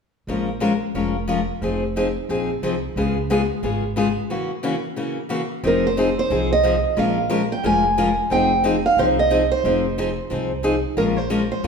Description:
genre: acoustic string swing (jazz manouche).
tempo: 180 BPM.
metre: 4/4.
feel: swing 60% on 8ths.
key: F minor.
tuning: A4 = 440 Hz.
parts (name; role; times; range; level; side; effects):
picked steel-string acoustic guitar; accompaniment; 0.3-11.7 s; Db3 to Bb4; -21 LUFS; left 2 dB; none.
upright bass; bass; 0.3-11.7 s; F1 to F2; -27 LUFS; right 1 dB; none.
picked steel-string acoustic guitar; melody; 5.7-11.7 s; Bb4 to Ab5; -20 LUFS; right 3 dB; none.
room: wet large studio reverb, RT60 1.3 s.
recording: band playing live in one room.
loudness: -18 LUFS.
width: side -5 dB against mid.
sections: 0.3-5.6 A section; 5.6-11.7 B section.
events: break 4.3-5.6.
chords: 0.3 Bbm7; 1.6 Fm7; 3.0 Db7; 4.3 Gb7; 5.6 Fm7; 7.0 Bbm7; 8.3 Fm7; 11.0 Bbm9.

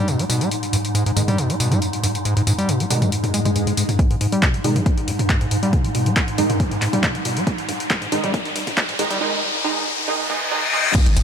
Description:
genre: driving peak-time techno.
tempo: 138 BPM.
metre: 4/4.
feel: straight.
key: G# harmonic minor.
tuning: A4 = 438 Hz.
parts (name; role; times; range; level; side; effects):
overdriven acid bass; riff; 0.0-11.2 s; G2 to G#3; -23 LUFS; equal; cassette tape, sidechain pumping, digital delay.
swarming drone; drone; 0.0-9.2 s; G#2; -26 LUFS; equal; built-in reverb, sidechain pumping.
punchy analog drum machine; drums; 0.1-11.2 s; crash cymbal, handclaps, hi-hat, ride cymbal, tambourine, toms; -24 LUFS; equal; overdrive, sidechain pumping on hats, sidechain pumping on toms, sidechain pumping on perc, sidechain pumping on cymbals.
rave stab; stabs; 1.2-10.9 s; D#3 to D#4; -26 LUFS; right 3 dB; chorus, built-in reverb, sidechain pumping, digital delay.
swell, riser, reverse cymbal and impact; sound effects; 3.3-11.2 s; none; -24 LUFS; left 2 dB; none.
electronic kick drum; drums; 4.0-11.0 s; none; -19 LUFS; equal; overdrive.
saturated sub bass; bass; 11.1-11.2 s; G#1; -16 LUFS; equal; tube saturation, sidechain pumping, low-pass filter.
room: light reverb.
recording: high-pass filter.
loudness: -17 LUFS.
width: side -8 dB against mid.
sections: 0.0-4.0 A section; 4.0-10.9 B section.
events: swell 3.3-4.0; build-up 4.0-10.9; filter sweep on acid bass 4.0-10.9; filter sweep on synth stab 4.0-10.9; filter sweep 4.0-10.9; riser 5.5-10.9; reverse cymbal 10.1-10.9; impact 10.9.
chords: 0.0 G#5.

